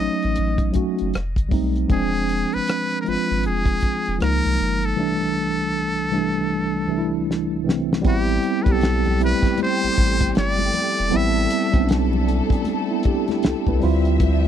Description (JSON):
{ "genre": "R&B, neo-soul", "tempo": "78 BPM", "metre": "4/4", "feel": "swing 62% on 16ths", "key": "A minor", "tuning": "A4 = 439 Hz", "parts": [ { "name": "trumpet with metal mute", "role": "melody", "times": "0.0-11.9 s", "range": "G4 to E5", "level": "-25 LUFS", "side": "equal", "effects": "none" }, { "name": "mellow tine electric piano", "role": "accompaniment", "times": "0.0-14.5 s", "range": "C2 to B4", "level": "-22 LUFS", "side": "right 1 dB", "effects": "medium stereo tremolo" }, { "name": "round analog bass", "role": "bass", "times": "0.0-14.5 s", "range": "E1 to D2", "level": "-22 LUFS", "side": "equal", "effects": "none" }, { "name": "cloth-damped thuddy drum kit", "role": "drums", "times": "0.2-14.4 s", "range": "hi-hat, kick drum, rim click, snare drum", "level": "-21 LUFS", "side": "equal", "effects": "none" }, { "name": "warm studio string section", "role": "sustained chords", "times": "8.1-14.5 s", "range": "F3 to E5", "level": "-31 LUFS", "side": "left 3 dB", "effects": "none" }, { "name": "congas", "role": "percussion", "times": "8.1-14.5 s", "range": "none", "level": "-32 LUFS", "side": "left 7 dB", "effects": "none" } ], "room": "little or no reverb", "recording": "dry, close 1970s-style studio recording", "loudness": "-18 LUFS", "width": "side -9 dB against mid", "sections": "0.0-8.0 A section; 8.0-14.5 B section", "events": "drum fill 7.3-8.0", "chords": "0.0 B7 (rootless); 1.1 F9; 1.9 E7b9b13; 4.2 C#69; 5.0 C69; 8.0 Am9; 13.8 Dm11", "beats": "0.35 1.12 | 1.89 2.66 3.43 4.20 | 4.97 5.74 6.51 7.28 | 8.05 8.82 9.59 10.36 | 11.12 11.89 12.66 13.43 | 14.20" }